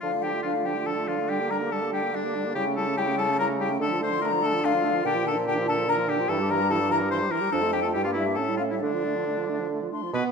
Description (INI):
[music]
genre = quick classical-period movement for wind quintet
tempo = 143 BPM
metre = 3/4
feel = rubato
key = D minor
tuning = A4 = 440 Hz
[part]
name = mellow silver concert flute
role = melody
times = 0.0-10.2 s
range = D5 to C6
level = -28 LUFS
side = left 6 dB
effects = none
[part]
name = bright oboe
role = second line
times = 0.0-10.2 s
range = D4 to C5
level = -30 LUFS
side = left 4 dB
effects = none
[part]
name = clear French horn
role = accompaniment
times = 0.0-10.3 s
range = D3 to B3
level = -34 LUFS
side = left 1 dB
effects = none
[part]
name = mellow clarinet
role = accompaniment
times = 0.0-10.3 s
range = B3 to G4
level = -32 LUFS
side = right 8 dB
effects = none
[part]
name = warm bassoon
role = bass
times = 0.0-10.2 s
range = F2 to D3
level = -28 LUFS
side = right 3 dB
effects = none
[sound]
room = moderate recital hall reverb, RT60 1.8 s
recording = dark, warm production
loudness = -23 LUFS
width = side -5 dB against mid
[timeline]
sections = 0.0-10.1 A section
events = none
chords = 0.0 Dm; 1.3 Gm/D; 2.6 A7/C#; 3.8 Dm; 5.0 Bb; 6.3 Gm69; 7.5 Dm/F; 8.0 Edim/G; 8.4 A7; 8.8 Dm